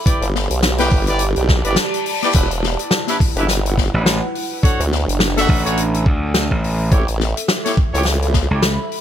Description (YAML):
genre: glitch hop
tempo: 105 BPM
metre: 4/4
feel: swing 58% on 16ths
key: E dorian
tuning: A4 = 440 Hz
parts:
  - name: warbly tape-like pad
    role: texture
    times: 0.0-9.0 s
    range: D4 to B5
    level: -26 LUFS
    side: right 2 dB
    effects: chorus, built-in reverb, sidechain pumping
  - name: warm horn section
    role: stabs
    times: 0.1-8.6 s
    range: D4 to G5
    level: -23 LUFS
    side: equal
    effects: sidechain pumping, digital delay
  - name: electronic kick drum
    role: drums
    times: 0.1-8.5 s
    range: none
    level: -16 LUFS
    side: equal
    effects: none
  - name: swinging big-band drum kit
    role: drums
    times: 0.1-9.0 s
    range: crash cymbal, hi-hat, snare drum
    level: -20 LUFS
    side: left 3 dB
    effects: none
  - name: formant-sweep wobble bass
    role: bass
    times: 0.2-8.5 s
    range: E1 to D2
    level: -19 LUFS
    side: equal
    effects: chorus, tube saturation
  - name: reverse cymbal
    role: sound effects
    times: 1.5-2.3 s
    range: none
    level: -27 LUFS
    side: left 6 dB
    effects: none
  - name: gritty slap bass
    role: bass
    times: 3.9-8.8 s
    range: A1 to D2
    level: -18 LUFS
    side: equal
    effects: overdrive
room: light reverb, studio reverb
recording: bright 1980s-style digital production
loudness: -15 LUFS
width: side -10 dB against mid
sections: 0.0-9.0 A section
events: reverse cymbal 1.5-2.3; kick drops out 1.8-2.3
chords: 0.1 G6; 2.3 Em7; 4.6 Dmaj7; 6.9 A7